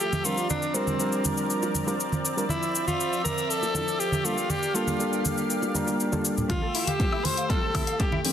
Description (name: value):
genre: nu-disco, nu disco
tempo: 120 BPM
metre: 4/4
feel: straight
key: F major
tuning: A4 = 444 Hz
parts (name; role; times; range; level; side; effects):
- raspy tenor saxophone; melody; 0.0-8.2 s; C4 to C5; -29 LUFS; equal; tape echo
- lush unison pad; sustained chords; 0.0-8.3 s; F3 to E6; -32 LUFS; equal; chorus, sidechain pumping
- house drum kit; drums; 0.0-8.3 s; cabasa, hi-hat, toms, woodblock; -31 LUFS; left 3 dB; overdrive
- congas and bongos; percussion; 0.1-8.2 s; none; -32 LUFS; right 2 dB; none
- overdriven reed electric piano; accompaniment; 0.2-8.3 s; F3 to Bb4; -29 LUFS; equal; spring reverb, sidechain pumping, tape echo
- direct-recorded clean electric guitar; riff; 6.5-8.3 s; C4 to F5; -34 LUFS; left 3 dB; ensemble chorus, low-pass filter
- electronic kick drum; drums; 6.5-8.1 s; none; -27 LUFS; equal; overdrive
room: moderate digital room reverb, RT60 1.1 s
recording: dense, heavily limited modern master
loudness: -24 LUFS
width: side -9 dB against mid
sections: 0.0-6.5 A section; 6.5-8.3 B section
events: build-up 6.5-8.3; drum fill 6.5-8.3; filter sweep on clean electric guitar 6.5-8.3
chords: 0.2 C9sus4; 2.5 Dm9; 4.2 Gm7; 6.5 Fmaj9